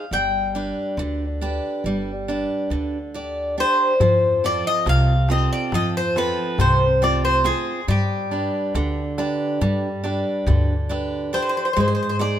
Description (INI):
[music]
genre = greek folk, Greek bouzouki band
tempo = 139 BPM (eighths)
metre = 9/8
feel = straight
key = unclear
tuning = A4 = 438 Hz
[part]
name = Greek bouzouki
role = melody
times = 0.0-12.4 s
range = G4 to G5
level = -20 LUFS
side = left 1 dB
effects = none
[part]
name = picked steel-string acoustic guitar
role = accompaniment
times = 0.0-12.4 s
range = C3 to D5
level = -25 LUFS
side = right 2 dB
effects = none
[part]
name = upright bass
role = bass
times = 0.1-12.4 s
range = G1 to Ab2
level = -24 LUFS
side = equal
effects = none
[part]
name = darbuka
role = percussion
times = 4.0-12.4 s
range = none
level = -25 LUFS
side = left 2 dB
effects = none
[sound]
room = light reverb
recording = minimal, uncompressed stereo recording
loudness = -19 LUFS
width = side -10 dB against mid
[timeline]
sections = 0.0-4.0 A section; 4.0-12.4 B section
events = none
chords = 0.1 G; 4.0 F; 7.9 G; 11.8 Ab